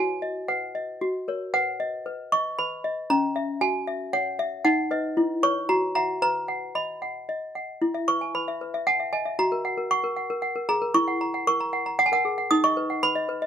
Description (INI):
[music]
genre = classical, lullaby for toy piano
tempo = 115 BPM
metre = 3/4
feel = straight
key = B major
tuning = A4 = 444 Hz
[part]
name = toy piano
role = solo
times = 0.0-13.5 s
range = C#4 to D#6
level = -23 LUFS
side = equal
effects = none
[sound]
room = light reverb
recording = close, detailed microphones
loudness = -23 LUFS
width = side -9 dB against mid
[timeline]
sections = 0.0-7.8 A section; 7.8-13.5 B section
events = none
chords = 0.0 B/F#; 1.0 F#; 1.5 B; 3.1 F#7/C#; 4.6 B/D#; 5.2 C#m7/E; 5.7 F#7; 6.2 B; 7.8 E; 9.4 F#; 12.5 B/D#